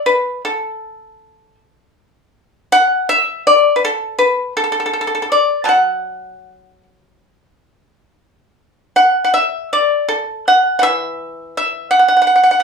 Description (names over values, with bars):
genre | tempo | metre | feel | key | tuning
chinese traditional, Chinese solo plucked strings | 69-82 BPM | 4/4 | rubato | unclear | A4 = 440 Hz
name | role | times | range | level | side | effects
pipa | solo | 0.1-12.6 s | E3 to A5 | -13 LUFS | equal | none
room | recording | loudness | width
moderate studio ambience, RT60 0.5 s | band playing live in one room, studio reverb | -13 LUFS | side -5 dB against mid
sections
0.0-12.6 A section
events
none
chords
none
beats
0.43 1.20 | 1.96 2.71 3.44 4.17 | 4.91 5.68 6.46 7.29 | 8.12 8.92 9.69 10.46 | 11.22 11.96